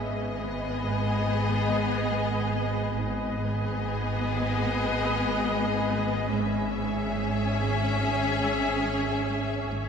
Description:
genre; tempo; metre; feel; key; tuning
cinematic; 71 BPM; 4/4; straight; G# minor; A4 = 442 Hz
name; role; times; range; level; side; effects
clear symphonic violin section; melody; 0.0-9.9 s; D#5 to E5; -34 LUFS; left 3 dB; none
warm symphonic violin section; second line; 0.0-9.9 s; G#4; -33 LUFS; left 2 dB; none
warm chamber viola section; accompaniment; 0.0-9.9 s; B3 to C#4; -32 LUFS; left 1 dB; none
bubbling stepped-filter texture; sustained chords; 0.0-9.9 s; G#4 to E5; -36 LUFS; equal; chorus, built-in reverb
dark symphonic cello section; riff; 0.0-9.9 s; G#2 to G#3; -38 LUFS; right 1 dB; none
rich symphonic cello section; bass; 0.0-9.9 s; G#2; -32 LUFS; equal; none
rich symphonic double bass section; bass; 0.0-9.9 s; G#1; -32 LUFS; right 1 dB; none
saturated sub bass; drone; 0.0-9.9 s; G#1; -40 LUFS; equal; none
bright grand piano; texture; 5.0-9.9 s; B4 to E6; -41 LUFS; left 1 dB; none
room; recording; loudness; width
wet cathedral reverb, RT60 4.7 s; minimal, uncompressed stereo recording; -25 LUFS; side -6 dB against mid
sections
0.0-9.9 A section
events
none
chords
0.0 G#m; 6.3 C#m/G#

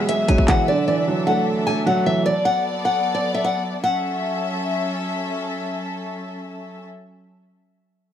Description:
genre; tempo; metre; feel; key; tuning
hip hop, trap; 152 BPM; 4/4; half-time; F# minor; A4 = 439 Hz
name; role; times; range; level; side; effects
dark baby grand piano; accompaniment; 0.0-2.3 s; B2 to A3; -21 LUFS; right 3 dB; none
dark studio string section; sustained chords; 0.0-6.8 s; F#3 to E5; -26 LUFS; left 1 dB; none
nylon-string guitar; melody; 0.1-5.0 s; D5 to G#5; -21 LUFS; left 2 dB; analog delay
trap drum kit; drums; 0.1-0.6 s; handclaps, hi-hat, kick drum; -18 LUFS; equal; none
room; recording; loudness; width
light reverb, studio ambience; dry, gritty hardware recording; -19 LUFS; side -10 dB against mid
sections
0.0-3.8 A section; 3.8-7.0 B section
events
none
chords
0.0 Eadd9; 0.7 Dadd9; 2.3 Bm7; 3.8 F#m7

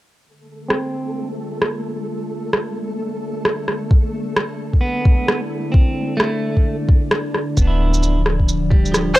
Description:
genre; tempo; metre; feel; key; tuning
future garage; 131 BPM; 4/4; swing 61% on 16ths; D dorian; A4 = 440 Hz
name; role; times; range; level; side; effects
warbly tape-like pad; sustained chords; 0.2-9.2 s; D3 to D5; -27 LUFS; equal; chorus, built-in reverb, sidechain pumping
flickering grainy texture; texture; 0.5-7.6 s; A3 to A4; -29 LUFS; equal; built-in reverb
clean electric guitar; accompaniment; 0.7-1.3, 4.8-9.2 s; F3 to E4; -24 LUFS; right 2 dB; sidechain pumping, low-pass filter, analog delay
electronic rim click and shaker; drums; 0.7-9.1 s; none; -19 LUFS; equal; low-pass filter on snare, low-pass filter on perc, low-pass filter on room
electronic kick drum; drums; 3.9-8.8 s; none; -14 LUFS; equal; none
soft 808-style bass; bass; 7.6-9.2 s; D1; -19 LUFS; equal; sidechain pumping
room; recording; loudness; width
digital ambience; dry, gritty hardware recording; -17 LUFS; side -16 dB against mid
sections
0.2-7.6 A section; 7.6-9.2 B section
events
filter sweep on clean electric guitar 0.2-7.6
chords
0.2 Dm7; 7.6 Dm

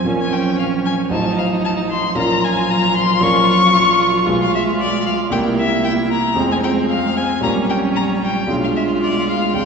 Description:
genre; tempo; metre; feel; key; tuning
quick classical-period movement for piano quartet; 114 BPM; 4/4; straight; F minor; A4 = 440 Hz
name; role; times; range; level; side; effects
rich violin; melody; 0.0-9.7 s; D5 to Db6; -19 LUFS; left 4 dB; none
rich cello; second line; 0.0-9.7 s; F3 to Bb3; -21 LUFS; right 3 dB; none
clear grand piano; accompaniment; 0.0-9.7 s; A1 to C5; -21 LUFS; equal; none
clear viola; accompaniment; 0.0-9.7 s; C4 to F4; -22 LUFS; right 1 dB; none
room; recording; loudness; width
wet church reverb, RT60 3.1 s; recorded in a church or concert hall, nothing above 8.0 kHz; -14 LUFS; side -5 dB against mid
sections
0.0-9.7 A section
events
none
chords
0.1 Bbm; 1.1 F7/A; 2.2 Bbm; 4.3 Bdim7; 5.3 C7; 6.4 Fm; 7.4 Gdim/Bb; 8.5 Bdim7

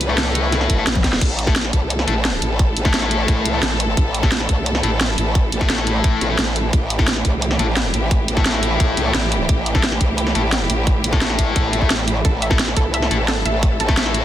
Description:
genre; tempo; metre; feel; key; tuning
dark technical drum and bass; 174 BPM; 4/4; straight; A minor; A4 = 441 Hz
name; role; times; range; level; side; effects
clear symphonic string section; sustained chords; 0.0-14.2 s; A2 to B4; -25 LUFS; right 1 dB; sidechain pumping
growl bass; bass; 0.0-14.2 s; G1 to C2; -22 LUFS; equal; chorus, tube saturation, sidechain pumping
drum and bass drum kit; drums; 0.0-14.2 s; crash cymbal, hi-hat, snare drum, toms; -21 LUFS; right 1 dB; studio reverb
sludgy distorted guitar; stabs; 0.1-14.2 s; A3 to A4; -24 LUFS; left 4 dB; overdrive, ping-pong delay
electronic kick drum; drums; 0.7-14.0 s; none; -17 LUFS; equal; studio reverb
analog pluck; arpeggios; 12.2-14.0 s; A4 to E5; -25 LUFS; right 1 dB; chorus, sidechain pumping, ping-pong delay
room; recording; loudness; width
light reverb; dense, heavily limited modern master; -16 LUFS; side -12 dB against mid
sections
0.0-1.2 A section; 1.2-14.2 A section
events
drop 0.0-1.2, 1.2-14.2; drum fill 1.0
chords
0.0 A5

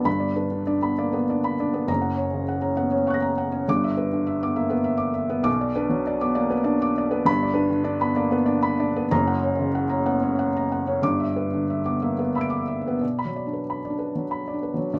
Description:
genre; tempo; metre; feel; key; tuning
neoclassical minimalist piano; 88-102 BPM; 3/4; rubato; B harmonic minor; A4 = 440 Hz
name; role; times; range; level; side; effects
felt-muted upright piano; solo; 0.0-15.0 s; F#1 to D7; -24 LUFS; equal; none
room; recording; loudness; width
light reverb; close, detailed microphones; -24 LUFS; mono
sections
0.0-13.0 A section; 13.0-15.0 B section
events
none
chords
0.1 G; 1.9 F#; 3.7 Em7/G; 5.5 Bm; 7.3 G; 9.1 F#; 11.0 Em7/G; 13.0 Bm

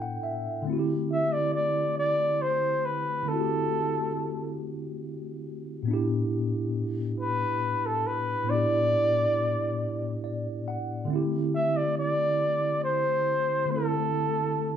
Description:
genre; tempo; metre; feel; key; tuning
R&B; 46 BPM (dotted quarters); 6/8; straight; unclear; A4 = 441 Hz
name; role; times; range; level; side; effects
mellow tine electric piano; accompaniment; 0.0-14.8 s; A2 to G5; -29 LUFS; equal; medium stereo tremolo
breathy flugelhorn; melody; 1.1-14.8 s; A4 to E5; -26 LUFS; equal; none
room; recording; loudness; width
moderate large studio reverb, RT60 0.9 s; band playing live in one room; -25 LUFS; side -9 dB against mid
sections
0.0-14.8 A section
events
tine electric piano fill 0.0-0.7, 9.8-11.1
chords
0.0 A9sus4; 0.7 D9sus4; 5.9 A9sus4; 11.1 D9sus4

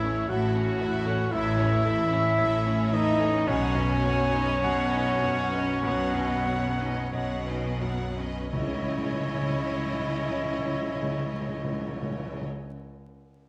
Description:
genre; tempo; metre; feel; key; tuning
cinematic, emotional film score for orchestra; 42-59 BPM; 4/4; rubato; C# minor; A4 = 441 Hz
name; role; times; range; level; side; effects
rich studio violin section; melody; 0.0-12.4 s; C#5 to F#5; -42 LUFS; equal; none
clear oboe; second line; 0.0-12.4 s; C#5 to F#5; -36 LUFS; equal; none
concert flute; second line; 0.0-12.4 s; A4 to G#5; -38 LUFS; equal; none
rich studio violin section; second line; 0.0-12.4 s; E4 to C#5; -43 LUFS; equal; none
warm grand piano; accompaniment; 0.0-13.5 s; A1 to D#5; -38 LUFS; equal; none
warm studio viola section; accompaniment; 0.0-12.4 s; B3 to E4; -41 LUFS; equal; none
mellow French horn section; sustained chords; 0.0-12.4 s; C#4 to F#4; -32 LUFS; equal; none
rich studio cello section; bass; 0.0-12.4 s; A2 to C#3; -36 LUFS; equal; none
warm studio double bass section; bass; 0.0-12.4 s; A1 to C#2; -35 LUFS; equal; none
warm clarinet; second line; 8.5-12.4 s; E4; -42 LUFS; equal; none
timpani; percussion; 8.5-12.5 s; C#3; -35 LUFS; equal; none
room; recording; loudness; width
moderate scoring stage reverb, RT60 1.5 s; vinyl crackle; -27 LUFS; mono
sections
0.0-8.5 A section; 8.5-13.5 B section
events
slowing down 0.0-8.5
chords
0.0 A; 3.5 Badd9; 8.5 C#madd9

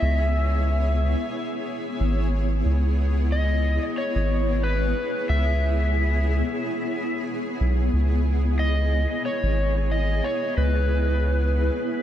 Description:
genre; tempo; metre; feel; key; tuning
ambient dub; 91 BPM; 4/4; swing 54% on 16ths; C# minor; A4 = 440 Hz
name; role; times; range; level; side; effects
overdriven slide guitar; melody; 0.0-12.0 s; B4 to E5; -28 LUFS; left 2 dB; dub echo
granular cloud pad; sustained chords; 0.0-12.0 s; B3 to G#5; -28 LUFS; left 1 dB; built-in reverb
soft dub sub bass; bass; 0.0-11.7 s; G#1 to C#2; -22 LUFS; equal; none
room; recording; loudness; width
light reverb, digital ambience; none; -21 LUFS; side -11 dB against mid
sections
0.0-12.0 A section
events
none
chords
0.0 C#m7

